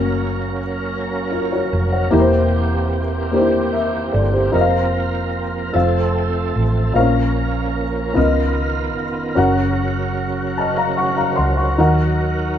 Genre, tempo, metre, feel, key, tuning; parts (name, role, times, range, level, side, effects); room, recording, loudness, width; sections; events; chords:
slow gospel; 50 BPM (dotted quarters); 6/8; straight; A4 = 440 Hz
dark upright piano; accompaniment; 0.0-12.6 s; Bb2 to Db6; -19 LUFS; left 2 dB
overdriven tonewheel organ; sustained chords; 0.0-12.6 s; Db3 to Bb4; -22 LUFS; right 3 dB; slow rotary speaker, chorus vibrato
hollow-body short-scale fingered electric bass; bass; 0.0-12.6 s; E1 to Eb2; -21 LUFS; right 1 dB
moderate large studio reverb, RT60 0.9 s; band playing live in one room; -16 LUFS; side -10 dB against mid
0.0-12.6 A section
0.0 Gb; 2.1 C7/E; 4.5 Fsus4; 5.7 F; 7.0 Bbm; 8.2 Db13; 9.4 Gb; 11.8 Ebm